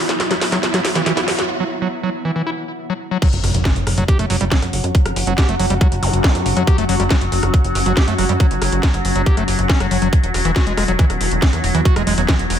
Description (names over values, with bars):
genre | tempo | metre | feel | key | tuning
psychedelic trance | 139 BPM | 4/4 | straight | unclear | A4 = 437 Hz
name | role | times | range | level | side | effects
overtone-sweeping drone | sustained chords | 0.0-12.6 s | F#3 | -25 LUFS | left 1 dB | chorus, built-in reverb, sidechain pumping
plucky analog bass | bass | 0.0-12.6 s | E1 to F#2 | -21 LUFS | equal | high-pass filter
riser, impact and zap | sound effects | 0.0-6.1 s | none | -26 LUFS | right 1 dB | none
granular cloud pad | texture | 0.0-12.6 s | B3 to F#5 | -26 LUFS | left 2 dB | built-in reverb, sidechain pumping
drum and bass drum kit | drums | 0.1-12.6 s | crash cymbal, hi-hat, rim click, snare drum | -22 LUFS | equal | none
overdriven acid bass | riff | 0.3-12.3 s | E3 to G4 | -22 LUFS | moving between left 8 dB and right 9 dB | auto-pan, sidechain pumping, digital delay
electronic kick drum | drums | 3.2-12.4 s | none | -14 LUFS | equal | none
room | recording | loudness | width
light reverb, digital ambience | none | -14 LUFS | side -9 dB against mid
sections
0.0-3.2 A section; 3.2-12.6 B section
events
build-up 0.0-3.2; drum fill 0.0-1.5; riser 0.0-1.5; filter sweep on acid bass 0.0-3.2; break 1.5-3.2; drop 3.2-12.6; impact 3.2-4.9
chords
0.0 E5; 3.2 F#5; 10.1 E5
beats
0.20 0.63 1.06 | 1.49 1.93 2.36 2.79 | 3.22 3.65 4.08 4.52 | 4.95 5.38 5.81 6.24 | 6.67 7.11 7.54 7.97 | 8.40 8.83 9.26 9.70 | 10.13 10.56 10.99 11.42 | 11.85 12.29